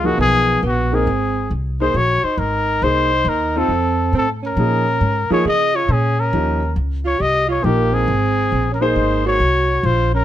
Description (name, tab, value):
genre	jazz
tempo	137 BPM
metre	4/4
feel	swing 66% on 8ths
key	Ab mixolydian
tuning	A4 = 438 Hz
part	warm trumpet	melody	0.0-10.2 s	Gb4 to Eb5	-19 LUFS	left 2 dB	none
part	mellow alto saxophone	second line	0.0-10.2 s	Bb3 to Ab4	-23 LUFS	right 5 dB	none
part	warm grand piano	accompaniment	0.0-9.4 s	F3 to C5	-21 LUFS	equal	none
part	upright bass	bass	0.0-10.2 s	Ab1 to Db3	-20 LUFS	equal	none
room	light reverb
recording	close, detailed microphones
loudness	-15 LUFS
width	side -12 dB against mid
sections	0.0-10.2 A section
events	none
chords	0.0 Db7; 1.1 Ab; 2.8 Cm7; 3.7 F; 4.6 Bbm7; 6.3 Eb7; 8.1 Ab7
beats	0.19 0.63 | 1.07 1.50 1.94 2.38 | 2.82 3.26 3.70 4.13 | 4.57 5.01 5.45 5.89 | 6.33 6.77 7.20 7.64 | 8.08 8.52 8.96 9.40 | 9.84